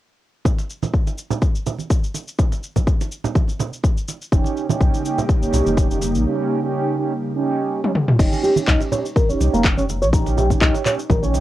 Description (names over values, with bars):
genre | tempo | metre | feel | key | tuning
afro house | 124 BPM | 4/4 | swing 55% on 16ths | unclear | A4 = 440 Hz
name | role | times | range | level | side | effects
congas | percussion | 0.4-11.4 s | none | -26 LUFS | right 5 dB | none
electronic kick drum | drums | 0.5-11.2 s | none | -18 LUFS | left 1 dB | none
house drum kit | drums | 0.5-11.4 s | crash cymbal, handclaps, shaker, toms | -24 LUFS | left 1 dB | none
ethereal airy pad | sustained chords | 4.8-6.2 s | Db3 to G4 | -25 LUFS | equal | ensemble chorus, built-in reverb, sidechain pumping, cassette tape
mellow synth brass | stabs | 4.3-11.4 s | Db4 to G4 | -24 LUFS | right 5 dB | chorus, sidechain pumping, cassette tape, tape echo
round analog bass | bass | 4.3-11.4 s | F1 to C2 | -21 LUFS | left 1 dB | sidechain pumping
nylon-string guitar | arpeggios | 8.2-11.3 s | Bb3 to Db5 | -21 LUFS | equal | sidechain pumping, low-pass filter, cassette tape, tape echo
room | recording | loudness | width
moderate booth ambience, RT60 0.2 s | home recording on cassette | -17 LUFS | side -14 dB against mid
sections
0.5-8.2 A section; 8.2-11.4 B section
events
drum fill 7.8-8.2; filter sweep on nylon-string guitar 8.2-11.4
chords
0.5 Eb7/F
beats
| 0.45 0.94 1.42 1.90 | 2.39 2.87 3.35 3.84 | 4.32 4.81 5.29 5.77 | 6.26 6.74 7.23 7.71 | 8.19 8.68 9.16 9.64 | 10.13 10.61 11.10